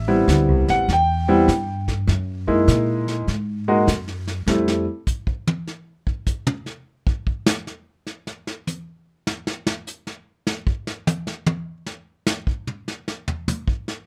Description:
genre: jazz piano trio.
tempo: 100 BPM.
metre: 4/4.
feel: swing 66% on 8ths.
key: unclear.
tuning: A4 = 442 Hz.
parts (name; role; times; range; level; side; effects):
clear concert grand piano; melody; 0.0-4.8 s; G3 to G5; -21 LUFS; equal; none.
upright bass; bass; 0.0-4.9 s; A1 to A#2; -24 LUFS; equal; none.
vintage brush drum kit; drums; 0.3-14.0 s; brushed snare drum, hi-hat, kick drum, snare drum, toms; -26 LUFS; equal; none.
room: light reverb.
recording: none.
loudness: -22 LUFS.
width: mono.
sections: 0.0-14.1 A section.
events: grand piano solo 0.0-14.1; drum solo 4.5-14.1.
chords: 0.0 Am7; 2.1 F#13; 4.5 N.C..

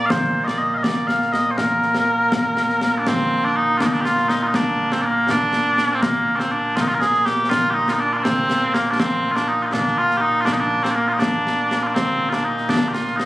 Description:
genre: scottish traditional, Scottish pipe music.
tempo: 81 BPM (dotted quarters).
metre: 6/8.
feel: straight.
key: Bb major.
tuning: A4 = 441 Hz.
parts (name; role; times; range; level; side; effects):
mellow small bagpipes; melody; 0.0-13.3 s; Bb2 to F5; -18 LUFS; equal; none.
concert snare drum and concert bass drum; drums; 0.1-13.3 s; none; -24 LUFS; left 1 dB; none.
room: moderate scoring stage reverb, RT60 2.1 s.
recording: recorded on a phone in the room, club reverb.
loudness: -17 LUFS.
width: side -16 dB against mid.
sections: 0.0-3.1 A section; 3.1-13.3 A section.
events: none.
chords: none.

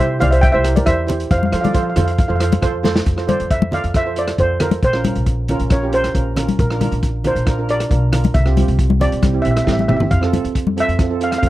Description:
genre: calypso.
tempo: 136 BPM.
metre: 4/4.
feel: straight.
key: F major.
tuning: A4 = 440 Hz.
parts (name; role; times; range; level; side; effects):
steel pan; melody; 0.0-11.4 s; Bb4 to G5; -20 LUFS; equal; none.
steel pan; accompaniment; 0.0-11.5 s; C4 to D5; -22 LUFS; right 5 dB; none.
upright bass; bass; 0.0-11.5 s; G1 to F3; -19 LUFS; equal; none.
vintage drum kit; drums; 0.2-11.5 s; hi-hat, kick drum, rim click, snare drum, toms; -19 LUFS; equal; none.
congas; percussion; 0.2-10.8 s; none; -20 LUFS; left 4 dB; none.
room: little or no reverb.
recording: dry, close 1970s-style studio recording.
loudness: -14 LUFS.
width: side -15 dB against mid.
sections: 0.0-3.1 A section; 3.1-11.5 B section.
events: drum fill 2.8, 9.7-10.1; steel pan solo 3.1-11.5.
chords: 0.0 C; 1.3 F; 4.8 Bbmadd9; 6.6 Bb; 8.3 Csus4; 9.2 C; 10.1 Fmaj7.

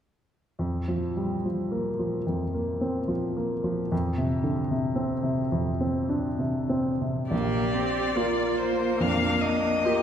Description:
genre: classical, slow romantic movement for piano quartet.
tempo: 62-77 BPM.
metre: 4/4.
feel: rubato.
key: Bb major.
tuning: A4 = 440 Hz.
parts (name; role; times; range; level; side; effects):
warm baby grand piano; accompaniment; 0.6-10.0 s; Bb1 to Bb4; -26 LUFS; equal; none.
rich violin; melody; 7.3-10.0 s; C5 to F5; -27 LUFS; left 5 dB; none.
rich cello; second line; 7.3-10.0 s; Bb3 to C4; -28 LUFS; right 1 dB; none.
rich viola; accompaniment; 7.3-10.0 s; D4 to G4; -30 LUFS; right 4 dB; none.
room: wet scoring stage reverb, RT60 1.6 s.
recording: heard from further back in the room.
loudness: -24 LUFS.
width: side -9 dB against mid.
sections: 0.6-7.3 A section; 7.3-10.0 B section.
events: none.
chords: 0.6 Bb5/F; 3.9 F5; 7.3 Bb.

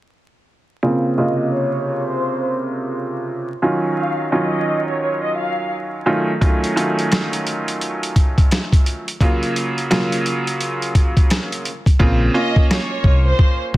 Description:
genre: hip hop, boom-bap hip-hop.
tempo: 86 BPM.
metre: 4/4.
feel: swing 61% on 16ths.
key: Bb harmonic minor.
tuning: A4 = 440 Hz.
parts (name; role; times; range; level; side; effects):
bright upright piano; accompaniment; 0.8-13.8 s; C3 to F4; -20 LUFS; right 1 dB; high-pass filter, low-pass filter.
rich symphonic violin section; melody; 1.2-5.7, 12.3-13.6 s; C5 to F5; -23 LUFS; equal; high-pass filter, low-pass filter, tape echo.
boom bap sampler-style drum kit; drums; 6.4-13.8 s; hi-hat, kick drum, rim click, snare drum; -16 LUFS; equal; none.
deep dub fingered electric bass; bass; 12.0-13.8 s; Bb1 to C2; -16 LUFS; equal; none.
room: studio reverb.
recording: dense, heavily limited modern master, vinyl crackle.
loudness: -16 LUFS.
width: side -16 dB against mid.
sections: 0.8-12.0 A section; 12.0-13.8 B section.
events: filter sweep 0.8-12.0; hi-hats muted 12.0-13.8.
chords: 0.8 Bbmadd9; 3.6 Ebm9; 6.1 F7b9b13; 9.2 Gbmaj7; 12.0 Bbmadd9.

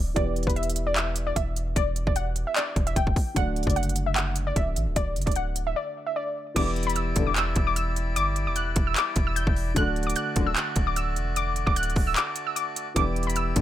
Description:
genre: hip hop, trap.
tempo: 150 BPM.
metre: 4/4.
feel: half-time.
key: E minor.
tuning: A4 = 439 Hz.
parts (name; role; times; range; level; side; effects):
warbly dusty pluck; melody; 0.0-13.6 s; B4 to G6; -29 LUFS; equal; chorus.
dark concert grand piano; accompaniment; 0.0-13.6 s; D3 to D5; -35 LUFS; left 1 dB; none.
long sustained 808-style bass; bass; 0.0-13.6 s; D1 to A1; -28 LUFS; equal; none.
trap drum kit; drums; 0.2-13.6 s; crash cymbal, handclaps, hi-hat, kick drum; -26 LUFS; equal; none.
accordion; sustained chords; 6.6-13.6 s; G3 to D5; -34 LUFS; left 2 dB; stereo widening.
warm brass ensemble; stabs; 6.6-7.3, 9.8-10.5, 13.0-13.6 s; A1 to D3; -33 LUFS; left 7 dB; none.
room: small room reverb.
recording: none.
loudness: -23 LUFS.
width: side -12 dB against mid.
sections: 0.0-6.6 A section; 6.6-13.6 B section.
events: break 5.8-6.6, 12.2-13.0.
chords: 0.2 Em7; 3.4 D; 6.6 Em7; 9.8 D; 13.0 Em7.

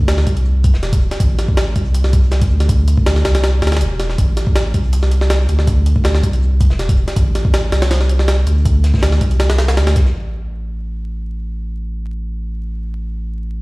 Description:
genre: drum and bass, jungle.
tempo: 161 BPM.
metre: 4/4.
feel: straight.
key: A minor.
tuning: A4 = 440 Hz.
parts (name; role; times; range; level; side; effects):
saturated sub bass; bass; 0.0-13.6 s; E1 to D2; -16 LUFS; equal; none.
crunchy breakbeat drum kit; drums; 0.1-10.1 s; hi-hat, shaker, snare drum; -35 LUFS; left 2 dB; none.
jungle sampler-style drum kit; drums; 0.1-10.1 s; hi-hat, kick drum, snare drum; -16 LUFS; equal; none.
room: little or no reverb.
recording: played on a big sound system in a bare room, stone room reverb, vinyl crackle.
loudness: -13 LUFS.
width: side -24 dB against mid.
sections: 0.0-10.1 A section; 10.1-13.6 B section.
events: drop 0.0-10.1.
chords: none.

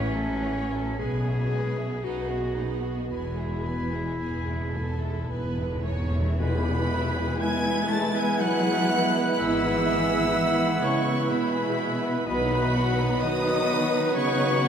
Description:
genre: classical, slow romantic movement for symphony orchestra.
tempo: 53-64 BPM.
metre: 3/4.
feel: rubato.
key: E major.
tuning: A4 = 440 Hz.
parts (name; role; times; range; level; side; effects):
rich studio violin section; melody; 0.0-14.7 s; D#5 to A6; -34 LUFS; equal; none.
bright clarinet; second line; 0.0-14.7 s; C#4 to G#5; -33 LUFS; left 1 dB; none.
rich studio violin section; second line; 0.0-14.7 s; G#3 to C#5; -34 LUFS; left 1 dB; none.
rich chamber viola section; accompaniment; 0.0-14.7 s; E3 to E4; -33 LUFS; right 4 dB; none.
rich chamber double bass section; bass; 0.0-13.1 s; E1 to E2; -32 LUFS; equal; none.
warm chamber cello section; bass; 0.0-14.7 s; E2 to A3; -31 LUFS; left 2 dB; none.
cymbal swell and tam-tam; percussion; 3.1-10.3 s; none; -38 LUFS; left 5 dB; none.
timpani; percussion; 3.1-6.3 s; E2; -32 LUFS; equal; none.
silver concert flute; second line; 6.4-14.7 s; B4 to A5; -32 LUFS; left 1 dB; none.
warm oboe; second line; 6.4-14.7 s; B4 to A5; -34 LUFS; right 1 dB; none.
warm French horn section; sustained chords; 6.4-14.7 s; B3 to F#4; -31 LUFS; right 1 dB; none.
warm trombone section; sustained chords; 6.4-14.7 s; D#3 to G#3; -33 LUFS; equal; none.
mellow trumpet; stabs; 6.4-14.7 s; B4; -32 LUFS; right 4 dB; none.
room: wet cathedral reverb, RT60 6.5 s.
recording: in a vast, echoing space.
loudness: -23 LUFS.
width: side -8 dB against mid.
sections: 0.0-6.4 A section; 6.4-14.7 A section.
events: timpani fill 3.1-6.4; band accent 6.4-7.4.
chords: 0.0 F#m7/A; 1.0 E/B; 2.0 B; 3.1 E; 9.4 E/G#; 12.3 B.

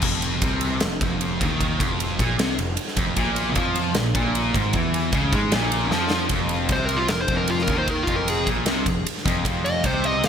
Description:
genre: hard rock.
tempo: 153 BPM.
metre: 4/4.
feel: straight.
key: F minor.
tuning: A4 = 440 Hz.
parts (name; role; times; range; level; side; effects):
sludgy distorted guitar; riff; 0.0-10.3 s; F2 to Ab3; -26 LUFS; equal; overdrive.
modern bright picked electric bass; bass; 0.0-10.3 s; F1 to Ab2; -28 LUFS; equal; none.
huge arena drum kit; drums; 0.0-10.3 s; crash cymbal, kick drum, ride cymbal, snare drum; -25 LUFS; equal; gated reverb.
distorted electric guitar; riff; 3.2-10.3 s; F2 to Ab3; -26 LUFS; equal; distortion.
dark smooth lead guitar; melody; 6.7-10.3 s; F4 to F5; -25 LUFS; equal; overdrive, ping-pong delay.
room: light reverb, studio reverb.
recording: bright 1980s-style digital production.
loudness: -20 LUFS.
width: side -8 dB against mid.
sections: 0.0-6.3 A section; 6.3-10.3 B section.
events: drum fill 5.9-6.3; lead electric guitar solo 6.3-10.3.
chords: 0.0 F5; 3.2 Bb5; 6.3 F5.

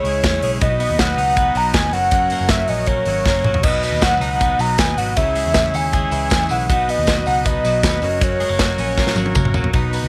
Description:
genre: jangly indie pop.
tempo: 158 BPM.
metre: 4/4.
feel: straight.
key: B major.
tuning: A4 = 437 Hz.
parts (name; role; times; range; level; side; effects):
warbly nostalgic lead; melody; 0.0-9.4 s; C#5 to A#5; -22 LUFS; equal; chorus.
combo organ; accompaniment; 0.0-10.1 s; C#4 to E5; -29 LUFS; equal; none.
twelve-string electric guitar; arpeggios; 0.0-10.1 s; F#2 to E4; -27 LUFS; equal; none.
vintage muted picked electric bass; bass; 0.0-10.1 s; F#1 to E2; -26 LUFS; equal; none.
modern studio drum kit; drums; 0.0-10.0 s; crash cymbal, hi-hat, kick drum, ride cymbal, snare drum, toms; -22 LUFS; equal; none.
tambourine; percussion; 3.6-10.0 s; none; -38 LUFS; equal; none.
room: small room ambience.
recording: none.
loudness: -18 LUFS.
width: mono.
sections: 0.0-9.7 A section.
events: drum fill 3.3-3.6, 9.0-9.7.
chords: 0.0 C#m; 0.6 B; 1.9 F#; 3.6 B; 5.2 C#m; 6.7 B; 8.0 F#.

